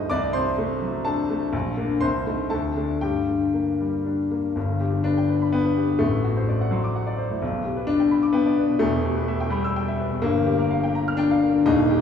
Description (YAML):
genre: classical, virtuoso piano study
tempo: 126 BPM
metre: 3/4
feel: rubato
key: G minor, G major from 4.6 s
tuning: A4 = 441 Hz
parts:
  - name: clear baby grand piano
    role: solo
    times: 0.0-12.0 s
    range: Eb1 to F6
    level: -20 LUFS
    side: left 2 dB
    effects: none
room: wet concert hall reverb, RT60 2.3 s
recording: heard from further back in the room, small room reverb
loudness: -20 LUFS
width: side -7 dB against mid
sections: 0.0-4.6 A section; 4.6-12.0 B section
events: none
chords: 0.1 D7/C; 1.5 Bb; 2.0 Adim/C; 2.5 D5; 3.0 Gm; 4.6 G; 6.0 D7/A; 7.4 G/B; 8.8 Em; 10.2 Gm7